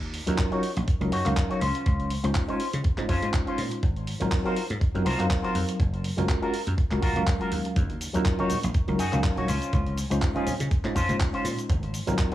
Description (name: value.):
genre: nu-disco, nu disco.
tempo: 122 BPM.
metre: 4/4.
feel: swing 55% on 16ths.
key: unclear.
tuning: A4 = 440 Hz.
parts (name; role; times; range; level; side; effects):
dry thumbed slap bass; bass; 0.0-12.1 s; Gb1 to Db3; -28 LUFS; equal; none.
dusty soul sampler-style drum kit; drums; 0.0-12.3 s; cabasa, handclaps, hi-hat; -35 LUFS; right 1 dB; none.
tine electric piano; accompaniment; 0.3-12.3 s; Gb3 to F5; -30 LUFS; equal; overdrive, fast stereo tremolo, tape echo.
electric guitar with an envelope filter; riff; 0.3-12.3 s; Db4 to Db5; -32 LUFS; left 2 dB; lush chorus, vintage 12-bit sampler grit, low-pass filter, tape echo.
electronic kick drum; drums; 0.4-12.3 s; none; -26 LUFS; equal; none.
congas; percussion; 7.8-11.8 s; none; -35 LUFS; right 2 dB; none.
room: light reverb.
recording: small room ambience.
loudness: -23 LUFS.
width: side -14 dB against mid.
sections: 0.0-12.3 A section.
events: filter sweep on clean electric guitar 0.0-12.3.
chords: 0.0 Ebm7; 1.6 Dbmaj7; 3.8 Ab13; 5.8 Gbmaj7; 7.8 Ebm7; 9.5 Dbmaj7; 11.7 Ab13.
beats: 0.39 0.88 1.37 | 1.86 2.35 2.85 3.34 | 3.83 4.32 4.81 5.30 | 5.80 6.29 6.78 7.27 | 7.76 8.26 8.75 9.24 | 9.73 10.22 10.71 11.21 | 11.70 12.19.